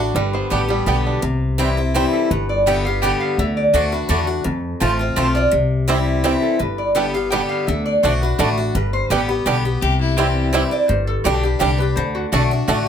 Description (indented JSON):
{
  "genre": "bluegrass",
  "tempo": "168 BPM",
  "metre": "3/4",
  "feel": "straight",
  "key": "G mixolydian",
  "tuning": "A4 = 440 Hz",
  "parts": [
    { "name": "lap resonator guitar", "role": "melody", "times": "0.0-12.9 s", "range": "F#4 to G5", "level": "-22 LUFS", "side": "equal", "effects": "none" },
    { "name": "picked swing-style acoustic guitar", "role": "accompaniment", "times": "0.0-12.9 s", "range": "F2 to G4", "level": "-21 LUFS", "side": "left 2 dB", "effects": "none" },
    { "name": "bluegrass banjo", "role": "arpeggios", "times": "0.0-1.2, 5.9-12.8 s", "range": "G3 to E4", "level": "-23 LUFS", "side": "right 5 dB", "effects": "none" },
    { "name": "upright bass", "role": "bass", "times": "0.0-12.9 s", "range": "G1 to F2", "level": "-21 LUFS", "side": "equal", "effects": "none" },
    { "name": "mandolin", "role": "stabs", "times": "0.5-12.8 s", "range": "A3 to A5", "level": "-24 LUFS", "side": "right 6 dB", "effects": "none" },
    { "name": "clear fiddle", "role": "second line", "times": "9.8-10.4 s", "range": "E4 to G4", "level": "-24 LUFS", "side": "left 5 dB", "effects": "none" }
  ],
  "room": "moderate small room reverb, RT60 0.5 s",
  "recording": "none",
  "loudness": "-16 LUFS",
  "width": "side -8 dB against mid",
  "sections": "0.0-1.2 A section; 1.2-9.8 A section; 9.8-12.9 B section",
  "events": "none",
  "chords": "0.2 G; 1.2 C; 2.3 G; 3.4 D; 4.5 F; 5.5 C; 6.6 G; 7.7 D; 8.7 G; 9.8 C; 10.9 Gsus2; 12.0 D"
}